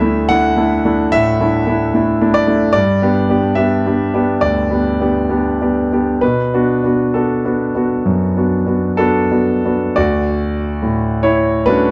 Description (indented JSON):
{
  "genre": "neoclassical minimalist piano",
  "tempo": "57-74 BPM",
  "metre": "4/4",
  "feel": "rubato",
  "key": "D major",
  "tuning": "A4 = 440 Hz",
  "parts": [
    { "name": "clear concert grand piano", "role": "solo", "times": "0.0-11.9 s", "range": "D2 to F#5", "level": "-15 LUFS", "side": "equal", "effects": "none" }
  ],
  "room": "light reverb",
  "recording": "dark, warm production",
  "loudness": "-15 LUFS",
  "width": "mono",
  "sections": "0.0-10.0 A section; 10.0-11.9 B section",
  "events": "none",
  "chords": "0.0 Dsus2; 2.8 G; 6.2 Bm7; 10.0 Dmaj7"
}